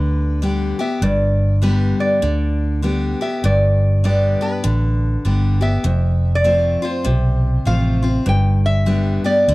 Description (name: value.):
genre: honky-tonk and classic country.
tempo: 99 BPM.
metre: 4/4.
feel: swing 62% on 8ths.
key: G mixolydian.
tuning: A4 = 440 Hz.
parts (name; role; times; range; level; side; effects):
lap resonator guitar; melody; 0.0-9.5 s; B4 to G5; -21 LUFS; equal; none.
picked steel-string acoustic guitar; accompaniment; 0.0-9.5 s; F2 to G4; -21 LUFS; left 2 dB; none.
vintage muted fingered electric bass; bass; 0.0-9.5 s; F1 to D2; -17 LUFS; equal; none.
room: small room ambience.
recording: dry, close 1970s-style studio recording.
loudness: -15 LUFS.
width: side -20 dB against mid.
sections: 0.0-9.5 A section.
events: none.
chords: 0.0 G; 5.9 F; 8.3 G.